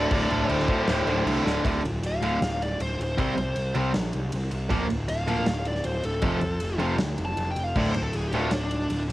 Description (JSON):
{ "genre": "hard rock", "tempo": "157 BPM", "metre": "4/4", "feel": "straight", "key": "D minor", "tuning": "A4 = 440 Hz", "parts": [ { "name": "bluesy overdriven lead guitar", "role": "melody", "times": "0.0-9.0 s", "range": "D4 to A5", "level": "-31 LUFS", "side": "left 1 dB", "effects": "distortion" }, { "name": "octave-fuzz lead guitar", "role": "second line", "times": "0.0-1.2 s", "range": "A4", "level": "-38 LUFS", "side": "left 2 dB", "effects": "none" }, { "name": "distorted electric guitar", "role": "riff", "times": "0.0-8.5 s", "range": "D2 to C4", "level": "-31 LUFS", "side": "left 7 dB", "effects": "overdrive" }, { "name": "tight distorted guitar", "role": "riff", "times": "0.0-8.5 s", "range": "D2 to C4", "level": "-27 LUFS", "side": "right 3 dB", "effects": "distortion" }, { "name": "fuzz picked electric bass", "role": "bass", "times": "0.0-9.1 s", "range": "D1 to F2", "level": "-29 LUFS", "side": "equal", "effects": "overdrive" }, { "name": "huge arena drum kit", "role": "drums", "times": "0.1-9.1 s", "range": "crash cymbal, kick drum, ride cymbal, snare drum", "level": "-31 LUFS", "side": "equal", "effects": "cassette tape" } ], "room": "light reverb, small room ambience", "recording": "home recording on cassette", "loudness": "-23 LUFS", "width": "side -16 dB against mid", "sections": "0.0-1.6 A section; 1.6-9.1 B section", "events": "drum fill 1.4; lead electric guitar solo 1.6-9.1", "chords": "0.0 D5; 1.6 Dm; 3.2 C5; 4.7 Bb/D; 6.2 F; 7.8 D5", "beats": "| 0.11 0.49 0.88 1.26 | 1.64 2.02 2.41 2.79 | 3.17 3.55 3.94 4.32 | 4.70 5.08 5.47 5.85 | 6.23 6.62 7.00 7.38 | 7.76 8.15 8.53 8.91" }